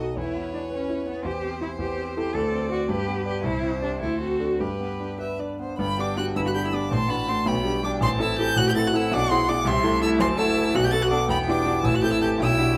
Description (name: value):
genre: quick classical-period movement for piano quartet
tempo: 109 BPM (dotted quarters)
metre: 6/8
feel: rubato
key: G major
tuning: A4 = 441 Hz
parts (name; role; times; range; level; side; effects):
- rich violin; melody; 0.0-12.8 s; B4 to A6; -31 LUFS; equal; none
- rich cello; second line; 0.0-12.8 s; B3 to A4; -31 LUFS; equal; none
- rich violin; second line; 0.0-12.8 s; A4 to B5; -36 LUFS; equal; none
- warm concert grand piano; accompaniment; 0.0-12.8 s; E1 to D5; -27 LUFS; equal; none
room: moderate studio reverb, RT60 0.7 s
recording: none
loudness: -24 LUFS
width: mono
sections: 0.0-5.8 A section; 5.8-12.8 B section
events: none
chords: 0.2 E5; 1.3 C/E; 1.8 Am7/E; 2.4 D7; 2.9 G; 3.4 C; 4.0 D7; 4.6 G; 6.9 D/A; 7.5 G/B; 8.0 Am; 9.1 E/B; 9.7 Am/C; 10.2 F#m7b5; 10.7 B5; 11.3 Em; 11.8 Am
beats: | 0.18 0.72 | 1.26 1.80 | 2.35 2.90 | 3.44 4.01 | 4.61 5.20 | 5.79 6.36 | 6.91 7.47 | 8.02 8.57 | 9.12 9.67 | 10.21 10.75 | 11.30 11.84 | 12.40